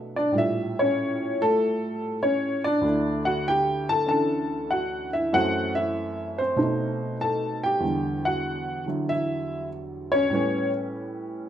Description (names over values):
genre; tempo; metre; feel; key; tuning
solo jazz; 96 BPM; 4/4; swing 68% on 8ths; unclear; A4 = 441 Hz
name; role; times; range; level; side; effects
warm upright piano; solo; 0.0-11.5 s; D2 to A5; -23 LUFS; equal; none
room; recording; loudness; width
moderate large studio reverb, RT60 0.9 s; minimal, uncompressed stereo recording; -23 LUFS; side -10 dB against mid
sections
0.0-11.5 A section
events
none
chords
0.3 A7b9; 2.8 Dmaj9; 5.3 F#m7b5; 6.6 B7b9; 7.8 Em9; 10.3 A9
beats
| 0.33 0.96 1.58 2.21 | 2.83 3.46 4.08 4.70 | 5.33 5.95 6.57 7.20 | 7.82 8.45 9.07 9.69 | 10.31 10.94